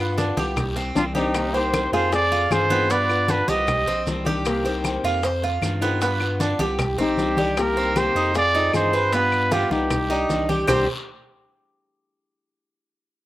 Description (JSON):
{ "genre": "latin, Cuban son and guajira", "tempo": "154 BPM", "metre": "4/4", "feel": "straight", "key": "C minor", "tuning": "A4 = 440 Hz", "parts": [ { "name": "picked old ladder-braced acoustic guitar", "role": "accompaniment", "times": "0.0-10.9 s", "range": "C3 to G4", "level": "-28 LUFS", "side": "left 3 dB", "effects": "slapback echo" }, { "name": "Cuban tres", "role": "arpeggios", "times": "0.0-10.9 s", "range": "B3 to C5", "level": "-25 LUFS", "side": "right 2 dB", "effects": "slapback echo" }, { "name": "round analog bass", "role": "bass", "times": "0.0-10.9 s", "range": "Bb1 to G2", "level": "-28 LUFS", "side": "equal", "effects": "none" }, { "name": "bongos", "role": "percussion", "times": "0.2-10.8 s", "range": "none", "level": "-34 LUFS", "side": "left 4 dB", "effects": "none" }, { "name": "congas", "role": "percussion", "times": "0.2-10.8 s", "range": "none", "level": "-29 LUFS", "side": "left 1 dB", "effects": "none" }, { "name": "guiro", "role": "percussion", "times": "0.2-10.8 s", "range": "none", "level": "-37 LUFS", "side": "left 3 dB", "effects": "slapback echo" }, { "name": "maracas", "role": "percussion", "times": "0.2-10.8 s", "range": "none", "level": "-38 LUFS", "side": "right 5 dB", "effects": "none" }, { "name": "claves", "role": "percussion", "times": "0.6-10.8 s", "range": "none", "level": "-30 LUFS", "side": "left 5 dB", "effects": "none" }, { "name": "breathy trumpet", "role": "melody", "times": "1.0-4.1, 7.0-10.9 s", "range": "Eb4 to Eb5", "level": "-22 LUFS", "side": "right 1 dB", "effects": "slapback echo" }, { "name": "flamenco guitar", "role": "second line", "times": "1.0-4.1, 7.0-10.9 s", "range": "C4 to C5", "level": "-27 LUFS", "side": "left 3 dB", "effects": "none" } ], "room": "little or no reverb", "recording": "recorded outdoors, with no room sound", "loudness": "-19 LUFS", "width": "side -15 dB against mid", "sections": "0.0-7.6 A section; 7.6-10.7 B section; 10.7-12.2 C section", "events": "none", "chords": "0.0 G7; 0.6 Cmadd9; 1.4 Cm7; 2.1 Fm7; 2.9 G7; 3.7 Cmadd9; 4.5 Cm7; 5.2 Fm7; 6.0 G7; 6.8 Cmadd9; 7.6 Cm7; 8.4 Fm7; 9.1 G7; 9.9 Cmadd9; 10.7 C5" }